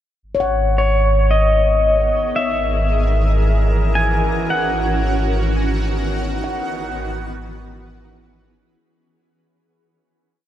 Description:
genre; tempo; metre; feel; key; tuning
ambient; 56 BPM; 4/4; straight; G# minor; A4 = 442 Hz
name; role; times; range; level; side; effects
shimmering ambient pad; sustained chords; 1.6-8.8 s; D#3 to B4; -24 LUFS; right 1 dB; chorus, built-in reverb, phaser
warm sub bass; bass; 0.2-8.8 s; G#1; -19 LUFS; equal; none
handpan; arpeggios; 0.3-7.2 s; C#5 to F#5; -25 LUFS; left 4 dB; ping-pong delay
pedal steel guitar; melody; 0.8-6.1 s; C#5 to G#5; -19 LUFS; left 1 dB; ping-pong delay
room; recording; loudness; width
wet huge ambient reverb, RT60 8.1 s; in a vast, echoing space; -16 LUFS; side -11 dB against mid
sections
0.2-8.8 A section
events
fade-in on ambient pad 0.2-8.8; fade-out 4.5-8.8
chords
0.2 G#madd9; 2.4 F#7/G#; 4.5 Bmaj7/G#; 6.7 C#m7/G#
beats
| 0.24 1.31 2.38 3.45 | 4.52 5.59 6.67 7.74

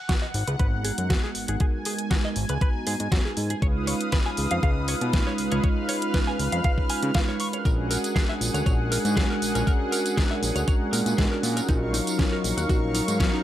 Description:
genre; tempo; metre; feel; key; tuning
nu-disco, nu disco; 119 BPM; 4/4; straight; G# dorian; A4 = 440 Hz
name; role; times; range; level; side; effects
lush unison pad; sustained chords; 0.0-13.4 s; F#3 to E#6; -32 LUFS; equal; chorus, sidechain pumping
clean electric guitar; riff; 0.1-13.4 s; C#4 to C#6; -33 LUFS; right 1 dB; analog chorus, low-pass filter, slapback echo
electronic kick drum; drums; 0.1-13.3 s; none; -23 LUFS; equal; overdrive
pop drum kit; drums; 0.1-13.3 s; hi-hat, snare drum, tambourine; -30 LUFS; equal; overdrive
warm analog pad; accompaniment; 0.7-13.4 s; F#3 to A#5; -29 LUFS; right 1 dB; chorus, slapback echo
fat analog bass; bass; 0.3-13.3 s; G#1 to C#3; -27 LUFS; equal; none
room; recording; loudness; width
light reverb, digital ambience; none; -22 LUFS; side -12 dB against mid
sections
0.0-13.4 A section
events
filter sweep on analog synth pad 0.0-13.4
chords
0.0 G#m9; 3.6 C#9; 7.7 A#7alt; 11.7 D#m9/A#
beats
0.09 0.60 1.10 | 1.60 2.11 2.61 3.12 | 3.62 4.13 4.63 5.13 | 5.64 6.14 6.65 7.15 | 7.66 8.16 8.66 9.17 | 9.67 10.18 10.68 11.19 | 11.69 12.19 12.70 13.20

